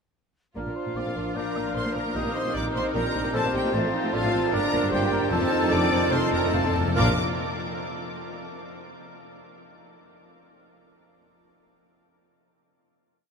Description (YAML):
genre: classical, dramatic, fast romantic movement for symphony orchestra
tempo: 150 BPM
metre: 4/4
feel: straight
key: Bb major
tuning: A4 = 440 Hz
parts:
  - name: clear clarinet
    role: second line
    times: 0.6-7.1 s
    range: C4 to Bb4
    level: -32 LUFS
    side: right 4 dB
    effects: none
  - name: mellow cor anglais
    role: second line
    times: 0.6-7.1 s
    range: A4 to F5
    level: -34 LUFS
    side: left 4 dB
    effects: none
  - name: rich symphonic violin section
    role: second line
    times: 0.6-7.2 s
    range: G3 to Bb4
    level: -34 LUFS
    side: equal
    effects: none
  - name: silver concert flute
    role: second line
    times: 0.6-7.2 s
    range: F6 to A6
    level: -36 LUFS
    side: left 3 dB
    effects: none
  - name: mellow bassoon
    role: accompaniment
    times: 0.6-7.1 s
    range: Bb3 to F4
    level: -34 LUFS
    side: right 5 dB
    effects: none
  - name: warm French horn section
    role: sustained chords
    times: 0.6-7.1 s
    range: D3 to D4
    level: -32 LUFS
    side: left 1 dB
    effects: none
  - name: rich studio double bass section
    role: bass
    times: 0.6-7.2 s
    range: F1 to Bb1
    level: -32 LUFS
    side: equal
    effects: none
  - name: warm symphonic cello section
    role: bass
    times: 0.6-7.2 s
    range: F2 to Bb2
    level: -33 LUFS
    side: equal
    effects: none
  - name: rich symphonic violin section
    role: melody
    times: 1.0-7.2 s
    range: F5 to D6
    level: -33 LUFS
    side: left 2 dB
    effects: none
  - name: rich symphonic viola section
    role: accompaniment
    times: 1.0-7.2 s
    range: D4 to D5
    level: -32 LUFS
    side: right 1 dB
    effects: none
  - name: timpani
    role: percussion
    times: 2.2-2.7, 5.3-7.2 s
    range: F2 to Bb2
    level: -33 LUFS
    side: left 2 dB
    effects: none
room: wet huge ambient reverb, RT60 7.4 s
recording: in a vast, echoing space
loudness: -22 LUFS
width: side -5 dB against mid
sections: 0.6-7.0 A section; 7.0-8.6 final chord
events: timpani fill 5.3-7.0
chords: 0.6 Bb; 2.2 Cm7/Bb; 3.7 F/A; 4.5 Gm; 5.3 F7; 7.0 Bb5